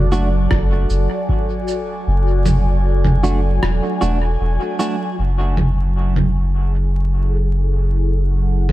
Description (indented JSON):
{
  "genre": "ambient dub",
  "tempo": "77 BPM",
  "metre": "4/4",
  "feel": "straight",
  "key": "F# minor",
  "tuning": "A4 = 437 Hz",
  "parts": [
    { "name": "airy breathy pad", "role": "sustained chords", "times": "0.0-8.7 s", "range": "F#3 to A5", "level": "-23 LUFS", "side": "right 1 dB", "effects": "chorus, phaser" },
    { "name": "soft dub sub bass", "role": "bass", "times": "0.0-8.7 s", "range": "E1 to F#1", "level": "-16 LUFS", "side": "equal", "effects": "none" },
    { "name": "clean electric guitar", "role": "stabs", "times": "0.1-5.0 s", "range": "A3 to F#4", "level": "-25 LUFS", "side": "right 2 dB", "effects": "dub echo" },
    { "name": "lo-fi sampler-style drum kit", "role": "drums", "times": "0.1-8.7 s", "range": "rim click, shaker, toms", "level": "-22 LUFS", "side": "equal", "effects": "overdrive, dub echo" },
    { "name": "electronic kick drum", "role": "drums", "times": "0.5-1.4 s", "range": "none", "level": "-22 LUFS", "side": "equal", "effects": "none" }
  ],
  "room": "little or no reverb",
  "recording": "vinyl crackle",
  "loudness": "-15 LUFS",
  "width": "side -16 dB against mid",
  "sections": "0.0-5.2 A section; 5.2-8.7 B section",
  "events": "kick drops out 2.1-5.2; filter sweep on analog synth pad 5.2-8.7",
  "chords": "0.0 D/F#; 5.2 F#m7"
}